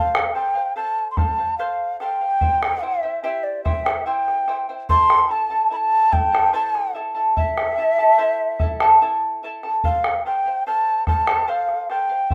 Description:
andean folk, Andean ensemble; 73 BPM; 3/4; straight; A4 = 440 Hz
breathy large quena; melody; 0.0-12.3 s; D5 to C6; -22 LUFS; equal
charango; accompaniment; 0.0-12.3 s; E4 to A5; -25 LUFS; equal
bombo; percussion; 0.1-12.3 s; -26 LUFS; equal
moderate studio reverb, RT60 0.5 s; -20 LUFS; mono
0.0-12.3 A section
0.0 F; 2.4 C; 4.9 Am; 9.8 F
0.76 1.58 | 2.41 3.23 4.06 | 4.88 5.71 6.53 | 7.36 8.18 9.01 | 9.83 10.65 11.48 | 12.30

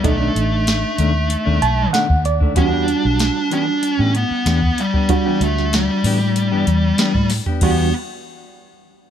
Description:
straight-eighth soul blues; 95 BPM; 4/4; straight; A4 = 435 Hz
smooth overdriven lead guitar; melody; 0.0-7.9 s; G3 to D4; -20 LUFS; left 1 dB
reed electric piano; accompaniment; 0.0-7.9 s; G3 to A5; -23 LUFS; right 6 dB; fast tremolo
mellow electric guitar; stabs; 0.0-7.9 s; B2 to G4; -26 LUFS; left 6 dB
vintage muted fingered electric bass; bass; 0.0-7.9 s; A1 to A2; -19 LUFS; equal
soft vintage rhythm box; drums; 0.0-7.8 s; crash cymbal, hi-hat, kick drum, snare drum, toms; -21 LUFS; equal
light reverb; -15 LUFS; side -9 dB against mid
0.0-7.6 A section; 7.6-9.1 B section
reed electric piano fill 1.3-2.6; drum fill 7.3-7.6
0.0 B7#9; 2.6 Em7
| 0.04 0.67 1.31 1.94 | 2.57 3.20 3.83 4.46 | 5.10 5.73 6.36 6.99 | 7.62

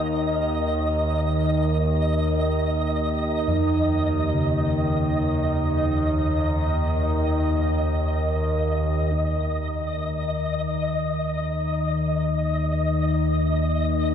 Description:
ambient; free time; A4 = 440 Hz
dark analog pad; sustained chords; 0.0-14.1 s; Eb3 to Bb5; -38 LUFS; right 2 dB; lush chorus, shimmer reverb
analog drone; drone; 0.0-14.1 s; Eb2 to Eb3; -22 LUFS; equal; chorus
flickering grainy texture; texture; 0.0-14.1 s; Eb5; -27 LUFS; equal; built-in reverb, shimmer reverb
gamelan-type bossed gongs; arpeggios; 3.5-11.1 s; F2 to Db3; -29 LUFS; left 1 dB; ping-pong delay
wet huge ambient reverb, RT60 7.8 s; dark, warm production; -21 LUFS; side -8 dB against mid
0.0-9.1 A section; 9.1-14.1 B section
fade-out on analog synth pad 0.0-9.1
0.0 Eb5
free time

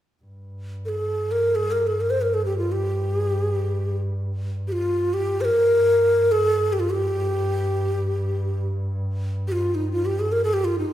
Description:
Arabic maqam ensemble; free time; G maqam bayati; A4 = 440 Hz
muted double bass; drone; 0.2-10.9 s; G2; -27 LUFS; equal
breathy mellow ney; melody; 0.9-10.9 s; Eb4 to C5; -21 LUFS; equal
wet recital hall reverb, RT60 1.8 s; minimal, uncompressed stereo recording; -20 LUFS; side -12 dB against mid
0.2-10.9 A section
free time

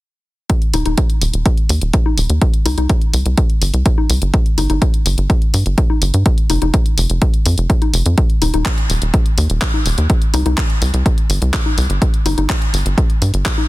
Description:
progressive house; 125 BPM; 4/4; straight; C minor; A4 = 440 Hz
electronic kick drum; drums; 0.5-13.6 s; -15 LUFS; equal
pop drum kit; drums; 0.5-13.6 s; handclaps, hi-hat; -22 LUFS; left 1 dB
tight sequencer bass; bass; 0.7-13.4 s; Eb1 to G2; -15 LUFS; equal; sidechain pumping
congas; percussion; 0.7-13.7 s; -23 LUFS; left 6 dB; sidechain pumping on perc
little or no reverb; dense, heavily limited modern master; -13 LUFS; side -18 dB against mid
0.5-13.7 A section
| 0.50 0.98 1.46 1.94 | 2.42 2.90 3.38 3.86 | 4.34 4.82 5.30 5.78 | 6.26 6.74 7.22 7.70 | 8.18 8.66 9.14 9.62 | 10.10 10.58 11.06 11.54 | 12.02 12.50 12.98 13.46

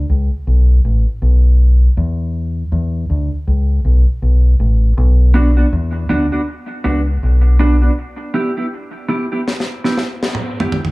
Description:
dub reggae; 80 BPM; 4/4; swing 60% on 16ths; A4 = 440 Hz
deep dub fingered electric bass; bass; 0.0-7.9 s; A1 to E2; -12 LUFS; equal
mellow electric guitar; accompaniment; 5.3-10.8 s; B3 to G4; -19 LUFS; right 1 dB; lush chorus, dub echo
deep reggae drum kit; drums; 9.5-10.9 s; snare drum, toms; -19 LUFS; equal
small room ambience; -13 LUFS; side -22 dB against mid
0.0-10.9 A section
break 0.0-5.0, 8.0-10.9; drum fill 9.5-10.9
0.0 N.C.; 2.0 E5; 5.0 Bm; 8.0 Em
0.46 1.21 | 1.96 2.71 3.46 4.21 | 4.97 5.72 6.47 7.22 | 7.97 8.72 9.47 10.22

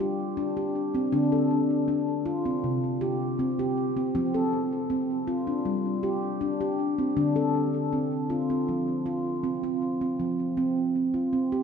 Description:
world meditative; 80 BPM; 4/4; straight; F major pentatonic; A4 = 439 Hz
handpan; solo; 0.0-11.6 s; C3 to A4; -25 LUFS; equal; ping-pong delay
wet lush hall reverb, RT60 3.0 s; dreamy mix soaked in reverb, nothing above 10.6 kHz; -25 LUFS; side -6 dB against mid
0.0-10.2 A section; 10.2-11.6 B section
0.0 G5; 1.1 Dm; 2.6 C5; 4.1 F; 5.7 G5; 7.2 Dm; 8.7 F5
0.38 | 1.13 1.88 2.64 3.39 | 4.15 4.90 5.66 6.41 | 7.17 7.92 8.68 9.44 | 10.19 10.95

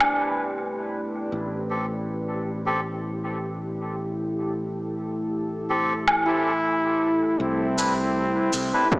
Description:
ambient dub; 79 BPM; 4/4; straight; A minor; A4 = 438 Hz
mellow trombone; melody; 0.0-0.9, 6.3-9.0 s; C4 to E4; -27 LUFS; equal; dub echo
deep dark ambient pad; sustained chords; 0.0-9.0 s; A3 to E5; -29 LUFS; equal; chorus, built-in reverb
modern bright fingered electric bass; bass; 0.0-9.0 s; A1 to E2; -32 LUFS; equal; tube saturation
woodblock and cabasa; drums; 0.0-0.1, 6.1-8.7 s; -28 LUFS; equal
melodica; stabs; 1.7-8.9 s; C4 to B4; -29 LUFS; equal; dub echo
electronic kick drum; drums; 8.9-9.0 s; -19 LUFS; equal; overdrive
wet echo chamber reverb, RT60 2.3 s; small speaker sound; -23 LUFS; side -23 dB against mid
0.0-7.4 A section; 7.4-9.0 B section
0.0 Cmaj9; 1.3 A7(no3); 7.4 Cmaj9
0.56 | 1.32 2.08 2.84 3.60 | 4.36 5.12 5.88 6.64 | 7.40 8.16 8.92

